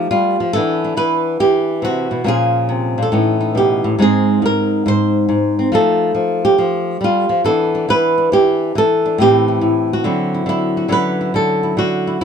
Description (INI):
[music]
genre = solo jazz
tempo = 139 BPM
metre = 4/4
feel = swing 67% on 8ths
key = unclear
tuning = A4 = 439 Hz
[part]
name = flamenco guitar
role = solo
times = 0.0-12.2 s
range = Ab2 to C5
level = -13 LUFS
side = equal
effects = none
[sound]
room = moderate small room reverb, RT60 0.6 s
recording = none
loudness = -13 LUFS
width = side -7 dB against mid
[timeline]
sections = 0.0-10.9 A section; 10.9-12.2 B section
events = none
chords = 0.0 F9; 0.5 Em11; 2.3 Bbm7; 3.1 A7#11; 4.0 Ab; 5.7 F9; 7.4 Em7; 9.2 Am7; 10.0 D9; 10.9 Dmaj9